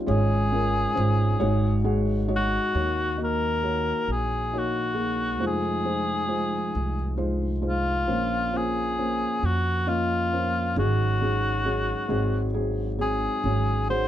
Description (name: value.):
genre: acoustic folk-pop ballad.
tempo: 45 BPM (dotted quarters).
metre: 6/8.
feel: straight.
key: unclear.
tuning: A4 = 440 Hz.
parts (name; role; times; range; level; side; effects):
felt-muted upright piano; accompaniment; 0.0-14.1 s; F1 to Gb5; -27 LUFS; left 1 dB; none.
warm cor anglais; melody; 0.1-14.1 s; F4 to C5; -27 LUFS; left 1 dB; none.
upright bass; bass; 0.1-14.1 s; Ab1 to F2; -27 LUFS; right 1 dB; none.
vibraphone with medium mallets; arpeggios; 13.9-14.1 s; Gb5; -37 LUFS; right 8 dB; none.
room: light reverb.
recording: none.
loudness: -23 LUFS.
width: side -11 dB against mid.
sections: 0.0-2.7 A section; 2.7-14.1 B section.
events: none.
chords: 0.1 Db/Ab; 1.4 Ab7sus4; 2.7 Ebm7; 5.4 Fm7; 8.1 Bbmadd9; 10.8 Ab7sus4; 12.1 Ab7; 13.4 Ab7sus4.